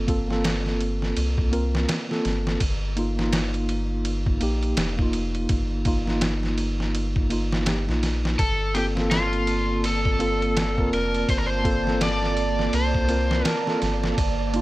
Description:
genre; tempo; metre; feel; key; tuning
trip hop; 83 BPM; 4/4; swing 60% on 16ths; G minor; A4 = 440 Hz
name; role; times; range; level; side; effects
mellow tine electric piano; accompaniment; 0.0-14.6 s; Bb3 to Bb4; -27 LUFS; equal; tremolo, low-pass filter, tape echo
soft dub sub bass; bass; 0.0-14.6 s; F1 to C2; -26 LUFS; equal; none
trip hop sampler-style drum kit; drums; 0.1-14.6 s; kick drum, ride cymbal, snare drum; -27 LUFS; equal; none
overdriven slide guitar; melody; 8.4-13.8 s; F4 to D5; -26 LUFS; left 1 dB; none
warbly tape-like pad; sustained chords; 9.2-14.6 s; Bb3 to A5; -31 LUFS; right 2 dB; chorus, built-in reverb
wind-like tuned noise texture; texture; 9.3-14.6 s; D5; -36 LUFS; right 9 dB; built-in reverb
room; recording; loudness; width
digital ambience; none; -21 LUFS; side -18 dB against mid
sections
0.0-14.6 A section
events
none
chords
0.0 Gm11; 2.6 Ebsus2; 8.4 Gm11

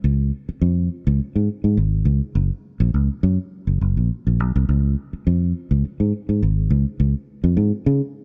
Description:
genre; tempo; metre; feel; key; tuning
funk; 104 BPM; 4/4; straight; Db mixolydian; A4 = 442 Hz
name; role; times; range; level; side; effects
fingered electric bass; solo; 0.0-8.0 s; Gb1 to Db3; -20 LUFS; equal; none
room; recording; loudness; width
digital ambience; dry, close 1970s-style studio recording; -21 LUFS; mono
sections
0.0-8.2 A section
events
none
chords
none

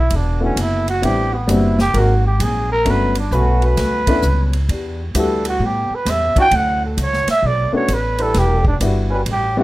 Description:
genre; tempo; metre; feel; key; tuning
jazz, big band swing; 131 BPM; 4/4; swing 66% on 8ths; D major; A4 = 439 Hz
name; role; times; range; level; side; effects
growling trumpet; melody; 0.0-9.6 s; B3 to G5; -19 LUFS; right 2 dB; none
upright bass; bass; 0.0-9.6 s; E1 to A2; -18 LUFS; equal; none
fingerpicked steel-string acoustic guitar; accompaniment; 0.1-9.6 s; G2 to C#5; -28 LUFS; left 3 dB; none
swinging big-band drum kit; drums; 0.1-9.4 s; hi-hat, kick drum, ride cymbal, snare drum; -24 LUFS; equal; none
warm upright piano; accompaniment; 0.4-9.6 s; G3 to G4; -20 LUFS; left 2 dB; none
warm trombone section; sustained chords; 1.9-9.2 s; E3 to B4; -21 LUFS; equal; none
room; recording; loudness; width
light reverb; rough home demo mix; -15 LUFS; side -17 dB against mid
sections
0.0-9.6 A section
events
trumpet solo 0.0-9.6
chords
0.0 D6; 1.0 Am11; 1.9 G#9; 2.9 Gmaj9#11; 4.7 Em7; 5.6 A9; 6.5 Dmaj9; 7.4 Bm9; 8.3 Em7

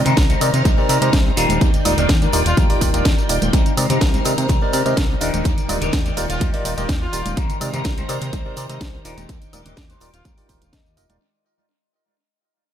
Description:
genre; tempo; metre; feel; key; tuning
filtered disco house; 125 BPM; 4/4; straight; unclear; A4 = 444 Hz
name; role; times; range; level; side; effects
string machine, full ensemble; sustained chords; 0.0-11.2 s; Eb3 to D6; -27 LUFS; equal; ensemble chorus, sidechain pumping
fat analog bass; bass; 0.0-11.2 s; Eb1 to C3; -23 LUFS; equal; tube saturation, sidechain pumping
semi-hollow electric guitar; riff; 0.1-11.2 s; C4 to G5; -26 LUFS; left 3 dB; phaser, sidechain pumping, tape echo
house drum kit; drums; 0.1-11.2 s; hi-hat, snare drum, tambourine, woodblock; -25 LUFS; equal; overdrive, sidechain pumping on hats, sidechain pumping on perc, tape echo
tambourine and congas; percussion; 0.1-11.2 s; none; -30 LUFS; right 4 dB; sidechain pumping on perc, tape echo
electronic kick drum; drums; 0.2-10.8 s; none; -18 LUFS; equal; overdrive
barky tine electric piano; accompaniment; 0.4-11.2 s; C4 to Eb5; -25 LUFS; equal; phaser, sidechain pumping, tape echo
clear horn section; melody; 2.5-2.6, 6.3-10.3 s; F4; -31 LUFS; left 1 dB; none
room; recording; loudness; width
light reverb, digital ambience; echo-heavy mix; -16 LUFS; side -10 dB against mid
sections
0.0-11.2 A section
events
drop 0.0-11.2; fade-out 3.5-11.2; clean electric guitar fill 10.3-11.2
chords
0.0 Cm7; 1.4 Ebmaj7; 3.5 Cm7; 5.2 Ebmaj7; 7.4 Cm7; 9.1 Ebmaj7

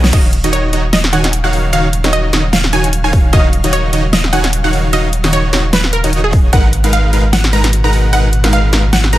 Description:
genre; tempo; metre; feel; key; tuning
future bass; 150 BPM; 4/4; swing 55% on 16ths, half-time; Eb minor; A4 = 440 Hz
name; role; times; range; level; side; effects
wide unison pluck; melody; 0.0-9.2 s; Ab4 to Bb5; -19 LUFS; right 1 dB; vintage 12-bit sampler grit, sidechain pumping, digital delay
supersaw stab; riff; 0.0-9.2 s; Eb3 to Bb5; -17 LUFS; right 1 dB; sidechain pumping
saturated sub bass; bass; 0.0-9.2 s; Eb1 to B1; -14 LUFS; equal; sidechain pumping
big-room dance drum kit; drums; 0.0-9.2 s; crash cymbal, hi-hat, snare drum; -16 LUFS; equal; none
airy breathy pad; sustained chords; 0.1-9.2 s; Bb2 to F5; -26 LUFS; right 1 dB; none
electronic kick drum; drums; 0.1-0.2, 3.1-3.4, 6.3-6.6 s; none; -11 LUFS; equal; none
room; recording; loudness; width
digital ambience; none; -10 LUFS; side -15 dB against mid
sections
0.1-9.2 A section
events
band accent 0.0; drop 0.1-9.2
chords
0.1 Ebm9; 6.5 Abm9

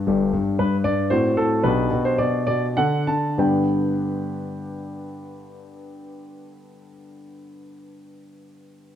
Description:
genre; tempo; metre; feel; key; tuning
classical-period piano sonatina; 95-116 BPM; 3/4; rubato; G major; A4 = 441 Hz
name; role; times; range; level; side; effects
clear concert grand piano; solo; 0.0-9.0 s; G1 to A5; -21 LUFS; left 1 dB; none
room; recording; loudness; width
moderate recital hall reverb, RT60 1.8 s; close, detailed microphones; -19 LUFS; side -10 dB against mid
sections
0.1-3.4 A section; 3.4-7.1 B section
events
slowing down 0.0-3.4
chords
0.0 G5; 1.1 F#dim/A; 1.6 G/B; 2.8 D; 3.4 G

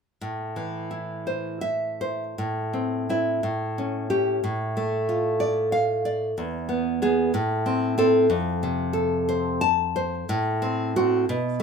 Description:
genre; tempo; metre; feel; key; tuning
romantic piece for solo classical guitar; 51-63 BPM (dotted quarters); 6/8; rubato; A minor; A4 = 441 Hz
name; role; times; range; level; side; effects
nylon-string guitar; solo; 0.2-11.6 s; E2 to A5; -22 LUFS; equal; none
room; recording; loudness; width
wet small room reverb, RT60 0.6 s; rough home demo mix; -22 LUFS; side -6 dB against mid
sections
0.2-2.4 A section; 2.4-11.6 B section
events
none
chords
0.2 Am; 3.4 A7; 4.4 Dm/A; 6.4 E; 7.3 Am; 8.3 F; 10.3 F#dim/A

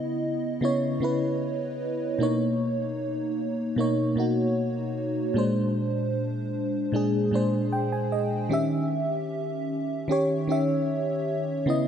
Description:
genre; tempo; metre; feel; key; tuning
R&B; 76 BPM; 4/4; straight; unclear; A4 = 440 Hz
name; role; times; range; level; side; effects
FM electric piano with soft pad layer; solo; 0.0-11.9 s; A#2 to G#5; -24 LUFS; equal; chorus, tape echo
room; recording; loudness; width
moderate lush hall reverb, RT60 2.5 s; dark, warm production; -24 LUFS; side -8 dB against mid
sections
0.0-11.9 A section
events
FM electric piano fill 7.3-8.5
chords
0.0 C#m9; 2.2 Bmaj9; 5.4 A#9; 8.5 D#7b9

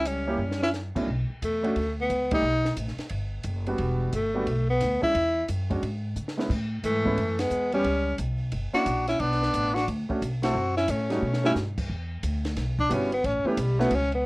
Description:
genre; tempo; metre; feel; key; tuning
jazz, small-group swing and bop; 178 BPM; 4/4; swing 65% on 8ths; B minor; A4 = 444 Hz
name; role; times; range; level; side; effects
warm tenor saxophone; melody; 0.0-14.3 s; E3 to F#4; -26 LUFS; left 1 dB; none
clear alto saxophone; second line; 0.0-0.7, 6.8-11.5 s; E3 to D4; -32 LUFS; right 1 dB; none
upright bass; bass; 0.0-14.2 s; E1 to C#3; -29 LUFS; equal; none
compact cocktail drum kit; drums; 0.1-14.2 s; crash cymbal, hi-hat, kick drum, ride cymbal, snare drum; -36 LUFS; equal; none
warm grand piano; accompaniment; 0.3-13.9 s; B2 to A4; -29 LUFS; right 1 dB; none
room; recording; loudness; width
light reverb; worn, warbling old tape, cassette tape, warbly pitch drift; -24 LUFS; side -24 dB against mid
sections
0.0-1.1 A section; 1.1-11.9 A section; 11.9-14.3 B section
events
drum fill 0.4-0.7, 6.2-6.5, 11.2-11.6; band accent 2.3, 7.3, 10.4; tenor saxophone solo 11.9-14.3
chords
0.4 F#5; 1.1 Bm7; 2.4 B7b13; 3.8 Em9; 5.1 E69; 6.5 Amaj9; 7.8 Bsus2; 8.5 F#7b13; 9.2 Bm7; 10.5 F#m; 11.2 B7b13; 11.9 Em9; 13.2 A7

